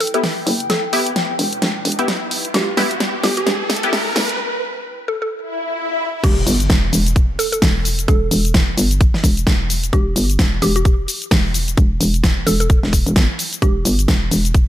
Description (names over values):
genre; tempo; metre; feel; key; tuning
bass house; 130 BPM; 4/4; swing 59% on 16ths; E minor; A4 = 440 Hz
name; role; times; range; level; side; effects
mallet-like synth pluck; melody; 0.0-13.8 s; G4 to A4; -24 LUFS; right 1 dB; chorus, digital delay
big-room dance drum kit; drums; 0.0-14.7 s; crash cymbal, hi-hat, shaker, snare drum; -20 LUFS; equal; none
riser, swell and impact; sound effects; 1.3-8.1 s; none; -25 LUFS; equal; none
warbly tape-like pad; texture; 0.0-4.4 s; E4 to G5; -28 LUFS; left 3 dB; chorus, built-in reverb, sidechain pumping
band-passed chord stab; stabs; 0.1-3.9 s; B3 to G4; -23 LUFS; left 1 dB; analog chorus, vintage 12-bit sampler grit, sidechain pumping, digital delay
hollow knocking FM bass; bass; 0.5-14.7 s; E1 to G1; -19 LUFS; equal; sidechain pumping, high-pass filter
electronic kick drum; drums; 6.2-14.7 s; none; -15 LUFS; equal; none
room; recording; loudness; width
light reverb; high-pass filter; -15 LUFS; side -12 dB against mid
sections
0.0-6.2 A section; 6.2-14.7 B section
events
build-up 0.0-6.2; drum fill 0.0-4.4; filter sweep on synth stab 0.0-6.2; filter sweep 0.0-6.2; riser 1.3-4.4; break 4.4-6.2; swell 5.5-6.2; drop 6.2-14.7; impact 6.2-8.1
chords
0.0 Em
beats
0.24 | 0.70 1.16 1.62 2.08 | 2.54 3.01 3.47 3.93 | 4.39 4.85 5.31 5.78 | 6.24 6.70 7.16 7.62 | 8.08 8.54 9.01 9.47 | 9.93 10.39 10.85 11.31 | 11.78 12.24 12.70 13.16 | 13.62 14.08 14.54